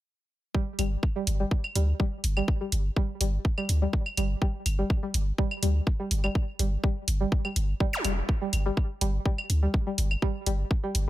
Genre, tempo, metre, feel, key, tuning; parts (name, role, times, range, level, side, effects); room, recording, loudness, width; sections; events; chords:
minimal techno; 124 BPM; 4/4; swing 53% on 16ths; A4 = 441 Hz
string-like resonator pluck; riff; 0.5-10.9 s; G3; -33 LUFS; equal; chorus, sidechain pumping, tape echo
electronic kick drum; drums; 0.5-10.8 s; -26 LUFS; equal
punchy sub bass; bass; 0.8-11.1 s; F1 to D2; -26 LUFS; equal; sidechain pumping
electronic hi-hat; drums; 0.8-11.1 s; -31 LUFS; right 1 dB
claves; percussion; 0.8-10.2 s; -35 LUFS; equal
zap; sound effects; 7.9-8.0 s; -33 LUFS; equal
digital ambience; -25 LUFS; side -15 dB against mid
0.5-11.1 A section
filter sweep on synth pluck 0.5-11.1
0.5 G5